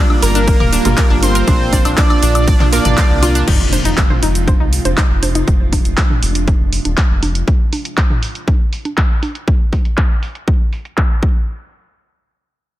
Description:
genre	progressive house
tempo	120 BPM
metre	4/4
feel	straight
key	F dorian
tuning	A4 = 440 Hz
part	soft supersaw	melody	0.0-3.4 s	Bb3 to D5	-20 LUFS	right 1 dB	cassette tape, tape echo
part	glassy wavetable pluck	second line	0.0-3.4 s	Bb5 to D6	-28 LUFS	left 1 dB	none
part	evolving wavetable pad	sustained chords	0.1-7.5 s	Bb2 to F4	-25 LUFS	right 2 dB	chorus, built-in reverb, sidechain pumping
part	analog pluck	arpeggios	0.0-5.5 s	D4 to F5	-22 LUFS	left 2 dB	chorus, sidechain pumping, tape echo
part	dark grand piano	stabs	0.0-3.4 s	G3 to F4	-22 LUFS	right 2 dB	sidechain pumping, tape echo
part	house drum kit	drums	0.1-11.1 s	crash cymbal, handclaps, hi-hat, ride cymbal, shaker, woodblock	-21 LUFS	equal	overdrive, low-pass filter on hats, low-pass filter on cymbals, low-pass filter on perc, low-pass filter on snare, low-pass filter on room
part	electronic congas, woodblock and toms	percussion	0.1-9.3 s	none	-23 LUFS	right 1 dB	sidechain pumping on toms, sidechain pumping on perc
part	round analog bass	bass	0.2-7.4 s	D1 to C2	-17 LUFS	equal	sidechain pumping
part	electronic kick drum	drums	0.5-11.3 s	none	-14 LUFS	equal	overdrive
part	impact	sound effects	3.5-5.5 s	none	-24 LUFS	equal	none
room	little or no reverb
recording	dense, heavily limited modern master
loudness	-12 LUFS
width	side -14 dB against mid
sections	0.0-3.5 A section; 3.5-11.5 B section; 11.5-12.8 C section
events	drop 0.0-3.5; impact 3.5-5.5; filter sweep on drum 3.5-11.5; filter sweep on synth arpeggio sound 3.5-5.5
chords	0.0 Gm7; 1.5 Bb; 3.5 Fm7; 7.5 N.C.

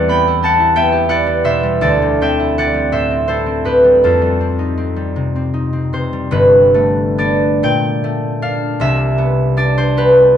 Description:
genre	classical, solo harp piece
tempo	44-62 BPM (dotted quarters)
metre	6/8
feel	rubato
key	G major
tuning	A4 = 441 Hz
part	concert harp	solo	0.0-10.4 s	G1 to B5	-12 LUFS	equal	none
room	moderate stone room reverb, RT60 1.1 s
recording	nothing above 10.5 kHz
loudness	-12 LUFS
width	side -9 dB against mid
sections	0.0-6.3 A section; 6.3-10.4 B section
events	none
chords	0.0 Em9; 1.8 D9sus4; 4.0 F9; 6.3 Gadd9; 7.6 Bbmaj7; 8.8 Cmaj9

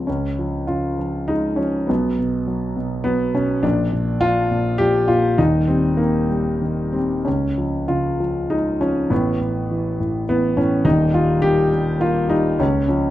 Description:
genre	classical, lyrical solo piano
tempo	91-106 BPM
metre	3/4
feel	rubato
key	unclear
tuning	A4 = 442 Hz
part	dark concert grand piano	solo	0.0-13.1 s	Eb1 to G4	-17 LUFS	equal	none
room	light reverb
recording	close, detailed microphones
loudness	-17 LUFS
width	side -14 dB against mid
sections	0.1-13.1 A section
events	none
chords	0.1 Db; 1.9 Cb5; 3.6 Bb; 5.4 Eb; 7.3 Db; 9.1 A5; 10.9 Eb; 12.6 Db

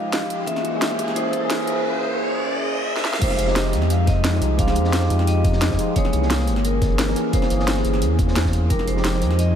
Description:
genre	liquid drum and bass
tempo	175 BPM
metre	4/4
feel	straight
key	F minor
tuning	A4 = 440 Hz
part	vibraphone with medium hard mallets	melody	0.0-9.6 s	Bb4 to F5	-28 LUFS	equal	ping-pong delay
part	tine electric piano	accompaniment	0.0-9.6 s	E3 to C5	-25 LUFS	equal	wide subtle chorus, ping-pong delay
part	glassy FM pad	sustained chords	0.0-9.6 s	E3 to E5	-28 LUFS	left 1 dB	ensemble chorus, built-in reverb
part	riser	sound effects	0.0-3.2 s	none	-30 LUFS	right 1 dB	none
part	drum and bass drum kit	drums	0.1-9.5 s	crash cymbal, hi-hat, snare drum	-27 LUFS	equal	overdrive
part	electronic kick drum	drums	0.2-8.8 s	none	-22 LUFS	equal	overdrive, high-pass filter on kick, high-pass filter on room
part	warm sub bass	bass	3.2-9.6 s	F1 to F2	-21 LUFS	equal	none
part	crunchy breakbeat drum kit	drums	3.2-9.5 s	hi-hat, snare drum	-32 LUFS	equal	high-pass filter on hats, high-pass filter on snare, high-pass filter on room
room	moderate huge ambient reverb, RT60 8.7 s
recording	dreamy mix soaked in reverb, high-pass filter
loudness	-18 LUFS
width	side -9 dB against mid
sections	0.0-3.2 A section; 3.2-9.6 B section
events	build-up 0.0-3.2; riser 0.0-3.2; filter sweep 0.0-3.2; drum fill 3.0; drop 3.2-9.6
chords	0.5 C7b9b13; 3.2 Fm9; 6.0 C7b9b13; 8.7 Fm9

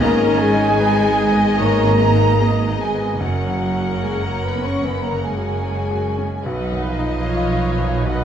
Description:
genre	cinematic, emotional film score for orchestra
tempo	74 BPM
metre	4/4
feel	rubato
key	F# major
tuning	A4 = 440 Hz
part	rich studio violin section	melody	0.0-8.2 s	D#5 to F#5	-30 LUFS	left 6 dB	none
part	mellow clarinet	second line	0.0-8.2 s	C#5 to D#5	-34 LUFS	left 2 dB	none
part	mellow cor anglais	second line	0.0-8.2 s	A#4 to G#5	-29 LUFS	right 3 dB	none
part	mellow large flute ensemble	second line	0.0-8.2 s	E#5 to C#6	-26 LUFS	right 4 dB	none
part	warm studio violin section	second line	0.0-8.2 s	E#5 to C#6	-31 LUFS	left 2 dB	none
part	bright grand piano	accompaniment	0.0-8.2 s	B1 to D#5	-26 LUFS	left 2 dB	none
part	dark studio viola section	accompaniment	0.0-8.2 s	G#3 to C#5	-26 LUFS	equal	none
part	mellow French horn section	sustained chords	0.0-8.2 s	E#4 to C#5	-24 LUFS	left 7 dB	none
part	warm studio cello section	bass	0.0-8.2 s	E#3 to C#4	-24 LUFS	right 2 dB	none
part	warm studio double bass section	bass	0.0-8.2 s	F#1 to B1	-22 LUFS	right 3 dB	none
room	moderate scoring stage reverb, RT60 1.6 s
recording	worn, warbling old tape, cassette tape, warbly pitch drift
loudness	-16 LUFS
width	side -9 dB against mid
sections	0.0-8.2 A section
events	none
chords	0.0 G#m; 3.2 F#; 6.5 B

